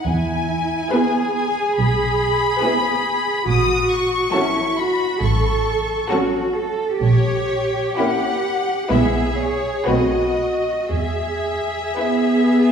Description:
classical, slow romantic movement for string orchestra; 56-72 BPM; 4/4; rubato; E major; A4 = 440 Hz
rich studio violin section; melody; 0.0-12.7 s; C#5 to D#6; -23 LUFS; left 4 dB
rich chamber cello section; bass; 0.0-12.7 s; E4 to A4; -22 LUFS; right 2 dB
rich studio double bass section; bass; 0.1-11.8 s; A1 to E2; -22 LUFS; right 2 dB
bright studio violin section; second line; 0.9-12.7 s; E4 to B4; -26 LUFS; left 3 dB
rich chamber viola section; accompaniment; 0.9-12.7 s; F#3 to E4; -21 LUFS; right 1 dB
wet scoring stage reverb, RT60 1.8 s; heard from further back in the room; -17 LUFS; side -7 dB against mid
0.0-12.7 A section
0.1 E; 3.5 F#m/A; 7.0 A#dim7; 8.9 E/B; 9.9 B7b9; 10.9 E

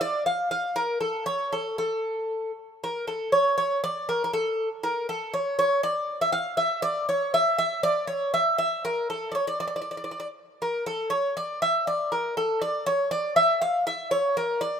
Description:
greek folk; 119 BPM; 4/4; straight; D harmonic minor; A4 = 444 Hz
Greek bouzouki; solo; 0.0-14.8 s; A4 to F5; -24 LUFS; equal
light reverb, studio ambience; rough home demo mix; -24 LUFS; side -7 dB against mid
0.0-10.9 A section; 10.9-14.8 B section

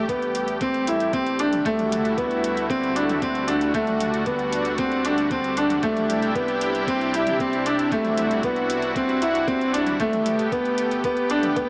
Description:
piano and strings electronica; 115 BPM; 4/4; straight; A4 = 440 Hz
lush unison pad; sustained chords; 0.0-11.7 s; C3 to G4; -29 LUFS; equal; chorus, sidechain pumping
warm sub bass; bass; 0.0-11.7 s; G1 to D2; -48 LUFS; equal; sidechain pumping
clear upright piano; riff; 0.1-11.7 s; A3 to E4; -24 LUFS; equal; digital delay
deep house drum kit; drums; 0.1-11.7 s; hi-hat, toms; -38 LUFS; equal; overdrive, small room ambience
electronic kick drum; drums; 0.1-11.7 s; -37 LUFS; equal; small room ambience
moderate concert hall reverb, RT60 2.3 s; small speaker sound; -23 LUFS; mono
0.0-11.7 A section
0.0 Am7; 1.7 D7; 5.8 Cadd9; 10.0 Gadd9

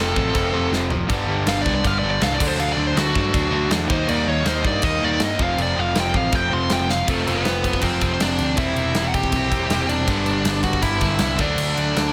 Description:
punk rock; 160 BPM; 4/4; straight; A4 = 442 Hz
bluesy overdriven lead guitar; melody; 0.0-12.1 s; A3 to C6; -26 LUFS; equal; distortion, tape echo
cranked stack guitar; riff; 0.0-12.1 s; F2 to Eb4; -30 LUFS; equal; overdrive
overdriven electric guitar; riff; 0.0-12.1 s; F2 to F4; -29 LUFS; equal
overdriven electric guitar; riff; 0.0-12.1 s; F2 to Eb4; -29 LUFS; equal
picked electric bass; bass; 0.0-12.1 s; E1 to G2; -28 LUFS; equal
big rock drum kit; drums; 0.2-12.0 s; crash cymbal, kick drum, snare drum, toms; -27 LUFS; equal
light reverb; -20 LUFS; mono
0.0-7.1 A section; 7.1-12.1 B section
lead electric guitar solo 0.0-7.1; drum fill 0.7-1.1, 6.9
0.0 F; 1.1 G; 2.4 D; 3.9 Eb; 5.4 F; 8.6 C/E; 10.1 G; 11.4 D

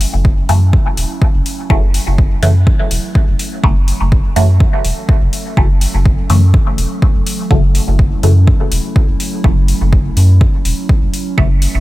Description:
dub techno; 124 BPM; 4/4; swing 53% on 16ths; F# minor; A4 = 441 Hz
warbly tape-like pad; sustained chords; 0.0-11.8 s; F#3 to A4; -25 LUFS; right 2 dB; chorus, built-in reverb, sidechain pumping
round analog bass; bass; 0.0-11.8 s; E1 to F#2; -12 LUFS; equal; sidechain pumping
electronic hi-hat; drums; 0.0-11.7 s; -23 LUFS; left 2 dB; overdrive, studio reverb
electronic kick drum; drums; 0.2-11.5 s; -13 LUFS; equal; overdrive, studio reverb
filtered dub chord stab; stabs; 0.5-11.5 s; C#3 to A3; -21 LUFS; equal; phaser, sidechain pumping, dub echo
little or no reverb; -10 LUFS; side -17 dB against mid
0.0-11.8 A section
0.0 F#m7

